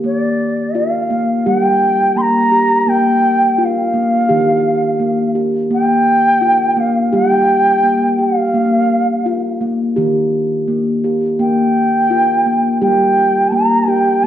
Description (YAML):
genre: world meditative, meditative tuned percussion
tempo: 85 BPM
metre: 4/4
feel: straight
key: Bb major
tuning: A4 = 440 Hz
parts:
  - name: steel tongue drum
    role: arpeggios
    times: 0.0-14.3 s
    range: Eb3 to G4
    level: -15 LUFS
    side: left 1 dB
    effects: none
  - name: mellow bansuri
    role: melody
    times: 0.1-14.3 s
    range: D5 to C6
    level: -14 LUFS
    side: right 1 dB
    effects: none
room: wet recital hall reverb, RT60 1.3 s, small room reverb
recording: worn, warbling old tape, cassette tape, warbly pitch drift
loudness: -12 LUFS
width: side -11 dB against mid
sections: 0.0-14.3 A section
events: none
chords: 0.0 Bb; 1.5 Gm; 2.9 Bb5; 4.3 Eb; 5.7 Bb5; 7.1 Gm; 8.5 Bb5; 10.0 Eb; 11.4 Bb5; 12.8 Gm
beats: | 0.05 0.75 1.46 2.17 | 2.88 3.59 4.29 5.00 | 5.71 6.42 7.13 7.84 | 8.55 9.26 9.97 10.68 | 11.39 12.10 12.81 13.52 | 14.23